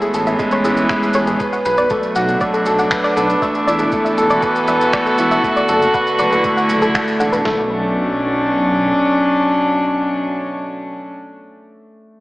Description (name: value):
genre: piano and strings electronica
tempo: 119 BPM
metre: 4/4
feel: straight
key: B minor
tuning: A4 = 438 Hz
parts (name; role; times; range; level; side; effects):
- dark string quartet; sustained chords; 0.0-11.2 s; A2 to A4; -17 LUFS; equal; sidechain pumping
- soft round pluck; arpeggios; 0.0-7.7 s; G#4 to F#5; -21 LUFS; equal; chorus, sidechain pumping, analog delay
- clear concert grand piano; riff; 0.0-12.2 s; G#3 to B4; -19 LUFS; equal; wide subtle chorus, analog delay
- shaker and finger snaps; drums; 0.0-7.4 s; none; -26 LUFS; equal; none
- dark detuned saw bass; bass; 0.1-8.9 s; E1 to B1; -25 LUFS; equal; sidechain pumping
- lo-fi sampler-style drum kit; drums; 0.4-7.6 s; kick drum, snare drum; -30 LUFS; equal; none
room: wet lush hall reverb, RT60 2.2 s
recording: dreamy mix soaked in reverb, small speaker sound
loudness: -14 LUFS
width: side -19 dB against mid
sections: 0.0-7.5 A section; 7.5-11.5 B section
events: drop 0.0-7.5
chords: 0.0 Amaj7; 1.4 Bm7; 3.4 E7sus4; 7.5 Bm7